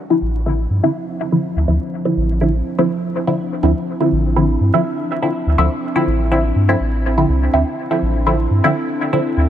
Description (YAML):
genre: dub techno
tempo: 123 BPM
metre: 4/4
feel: swing 54% on 16ths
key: unclear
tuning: A4 = 442 Hz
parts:
  - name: dark analog pad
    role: sustained chords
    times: 0.4-9.5 s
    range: F3 to A4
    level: -23 LUFS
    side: equal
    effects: chorus, phaser
  - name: filtered dub chord stab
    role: stabs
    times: 0.1-9.2 s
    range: D3 to E4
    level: -18 LUFS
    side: equal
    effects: phaser, dub echo
  - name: soft dub sub bass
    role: bass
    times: 0.2-9.5 s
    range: A1 to G2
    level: -17 LUFS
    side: equal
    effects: none
room: light reverb, digital ambience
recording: vinyl crackle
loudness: -15 LUFS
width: side -10 dB against mid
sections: 0.0-9.5 A section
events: none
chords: 0.0 Dm9